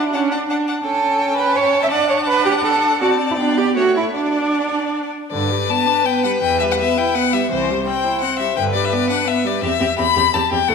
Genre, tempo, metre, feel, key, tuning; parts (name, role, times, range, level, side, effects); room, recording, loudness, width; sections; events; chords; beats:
quick classical-period movement for string quartet; 166 BPM; 3/4; rubato; D major, G major from 5.3 s; A4 = 444 Hz
rich violin; melody; 0.0-10.7 s; C5 to B5; -20 LUFS; left 8 dB
rich violin; second line; 0.0-10.7 s; G4 to G5; -24 LUFS; left 4 dB
rich viola; accompaniment; 0.0-10.7 s; D3 to E4; -22 LUFS; right 2 dB
clear cello; bass; 0.0-10.7 s; C2 to E5; -20 LUFS; right 3 dB
wet scoring stage reverb, RT60 1.8 s; minimal, uncompressed stereo recording; -15 LUFS; side -5 dB against mid
0.0-5.3 A section; 5.3-10.7 B section
0.0 D; 0.9 A7/C#; 1.9 D; 3.0 D7(no3)/C; 3.4 G/B; 3.8 A; 4.2 D; 5.3 G; 6.4 Em; 7.5 C; 8.6 G; 9.6 C/E
0.14 0.50 | 0.85 1.21 1.57 | 1.92 2.29 2.65 | 3.02 3.39 3.77 | 4.16 4.55 4.94 | 5.32 5.70 6.06 | 6.42 6.79 7.15 | 7.51 7.87 8.22 | 8.58 8.93 9.28 | 9.63 9.98 10.34 | 10.70